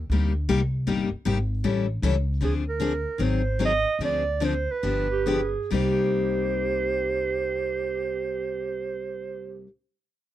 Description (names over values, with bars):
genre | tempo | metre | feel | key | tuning
acoustic string swing (jazz manouche) | 132-155 BPM | 4/4 | swing 62% on 8ths | C minor | A4 = 439 Hz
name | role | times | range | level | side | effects
upright bass | bass | 0.0-9.6 s | G1 to D2 | -28 LUFS | equal | none
picked steel-string acoustic guitar | accompaniment | 0.1-9.7 s | C3 to A4 | -27 LUFS | left 5 dB | none
mellow clarinet | melody | 2.4-9.7 s | Ab4 to Eb5 | -28 LUFS | right 4 dB | none
growling clarinet | second line | 5.1-9.6 s | G4 to Ab4 | -30 LUFS | right 8 dB | none
room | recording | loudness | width
little or no reverb | dry, close 1970s-style studio recording | -23 LUFS | side -12 dB against mid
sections
0.0-2.4 A section; 2.4-5.7 B section; 5.7-9.4 C section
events
slowing down 2.4-5.7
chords
0.0 Cm7; 1.6 A7; 2.4 Dm7b5; 3.2 Ab7; 4.0 Dm7b5; 4.8 G7b9; 5.7 Cm7